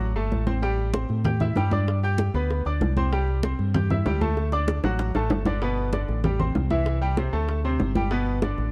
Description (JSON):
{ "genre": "latin, salsa", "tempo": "192 BPM", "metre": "4/4", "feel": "straight", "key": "G major", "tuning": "A4 = 440 Hz", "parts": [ { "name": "bright grand piano", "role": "accompaniment", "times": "0.0-8.7 s", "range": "B2 to G6", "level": "-30 LUFS", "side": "equal", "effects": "none" }, { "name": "deep dub fingered electric bass", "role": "bass", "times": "0.0-8.7 s", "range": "G1 to A2", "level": "-27 LUFS", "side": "equal", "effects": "none" }, { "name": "congas", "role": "percussion", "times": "0.0-8.7 s", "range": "none", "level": "-30 LUFS", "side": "equal", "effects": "none" }, { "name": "bongos", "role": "percussion", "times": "0.6-8.7 s", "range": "none", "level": "-33 LUFS", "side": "equal", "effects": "none" } ], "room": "little or no reverb", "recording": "dark, warm production", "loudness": "-24 LUFS", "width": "mono", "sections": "0.0-5.6 A section; 5.6-8.7 B section", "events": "drum fill 4.4-5.6", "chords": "0.0 D (rootless); 0.6 Am7; 1.9 G; 3.1 C; 4.4 D; 5.6 G; 6.2 Am7; 6.9 C; 7.5 D5; 8.1 G", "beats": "0.01 0.32 | 0.63 0.94 1.25 1.56 | 1.88 2.19 2.50 2.81 | 3.12 3.44 3.75 4.06 | 4.37 4.68 4.99 5.31 | 5.62 5.93 6.24 6.55 | 6.86 7.18 7.49 7.80 | 8.11 8.42" }